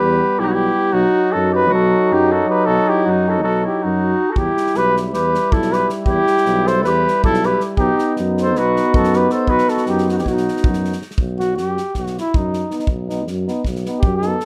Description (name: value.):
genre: balkan folk, Balkan brass band.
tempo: 317 BPM (eighths).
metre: 9/8.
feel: straight.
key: unclear.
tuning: A4 = 440 Hz.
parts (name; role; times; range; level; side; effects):
mellow flugelhorn; melody; 0.0-14.4 s; D#4 to C5; -21 LUFS; equal; none.
clear clarinet; second line; 0.0-11.1 s; D#4 to A4; -25 LUFS; equal; none.
clear euphonium; accompaniment; 0.0-14.4 s; F#3 to B3; -26 LUFS; equal; none.
warm trombone; accompaniment; 0.0-14.4 s; B3 to E4; -27 LUFS; equal; none.
warm tuba; bass; 0.0-14.3 s; B1 to F#2; -24 LUFS; equal; none.
natural country drum kit; percussion; 4.4-14.4 s; kick drum, snare drum; -24 LUFS; equal; none.
room: moderate spring reverb, RT60 1.7 s.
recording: none.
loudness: -17 LUFS.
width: mono.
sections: 0.0-11.2 A section; 11.2-14.4 B section.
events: flugelhorn solo 11.2-14.4.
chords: 0.0 Em; 0.9 B; 4.4 Em; 7.8 B.